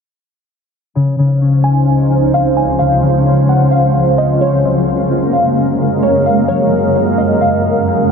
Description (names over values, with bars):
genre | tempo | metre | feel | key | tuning
hip hop | 130 BPM | 4/4 | half-time | Db major | A4 = 440 Hz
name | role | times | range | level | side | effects
shimmering ambient pad | sustained chords | 1.6-8.1 s | Db2 to F5 | -14 LUFS | right 2 dB | chorus, built-in reverb
concert harp | arpeggios | 1.0-8.1 s | Db3 to F4 | -15 LUFS | left 2 dB | ping-pong delay
twinkling granular texture | texture | 1.5-8.1 s | Bb3 to F5 | -23 LUFS | equal | built-in reverb
glassy wavetable pluck | melody | 1.6-8.1 s | Db5 to Ab5 | -16 LUFS | equal | chorus, ping-pong delay
room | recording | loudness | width
moderate huge ambient reverb, RT60 4.7 s | low-pass filter | -10 LUFS | side -6 dB against mid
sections
0.9-8.1 A section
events
filter sweep 0.9-8.1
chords
0.9 Dbmaj7; 4.6 Gbmaj7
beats
| 0.95 1.41 1.87 2.33 | 2.80 3.26 3.72 4.18 | 4.64 5.10 5.57 6.03 | 6.49 6.95 7.41 7.87